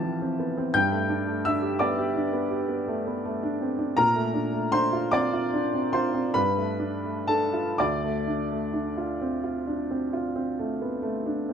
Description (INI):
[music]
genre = classical, impressionist solo piano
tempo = 39-57 BPM (dotted quarters)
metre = 9/8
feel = rubato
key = unclear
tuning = A4 = 440 Hz
[part]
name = warm baby grand piano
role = solo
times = 0.0-11.5 s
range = D2 to A6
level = -24 LUFS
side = equal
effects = none
[sound]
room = moderate recital hall reverb, RT60 1.3 s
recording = close, detailed microphones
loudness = -24 LUFS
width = side -7 dB against mid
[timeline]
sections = 0.0-11.5 A section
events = none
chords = 0.0 Am7; 0.7 Gadd9; 4.0 Bbmaj9; 6.4 G9; 7.8 Dm7